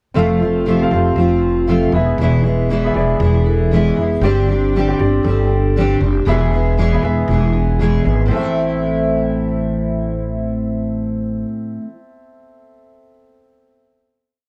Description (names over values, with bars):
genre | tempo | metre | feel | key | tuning
acoustic pop | 117 BPM | 4/4 | swing 60% on 16ths | A minor | A4 = 440 Hz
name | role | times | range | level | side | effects
fingerpicked steel-string acoustic guitar | accompaniment | 0.1-11.9 s | E2 to G#4 | -20 LUFS | equal | double-tracked
warm concert grand piano | accompaniment | 0.1-14.5 s | B3 to F5 | -26 LUFS | equal | none
upright bass | bass | 0.1-11.4 s | E1 to A1 | -21 LUFS | equal | none
vibraphone with soft mallets | second line | 0.2-11.4 s | E4 to C5 | -26 LUFS | equal | none
room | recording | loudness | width
small room ambience | dry, close 1970s-style studio recording | -16 LUFS | mono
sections
0.1-8.3 bridge; 8.3-12.4 final chord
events
none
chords
0.1 F; 1.9 E; 4.2 Gsus4; 6.3 E; 8.3 Am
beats
| 0.15 0.66 1.17 1.68 | 2.19 2.71 3.22 3.73 | 4.24 4.75 5.26 5.77 | 6.28 6.79 7.30 7.81 | 8.32 8.83 9.34 9.85 | 10.36 10.88 11.39 11.90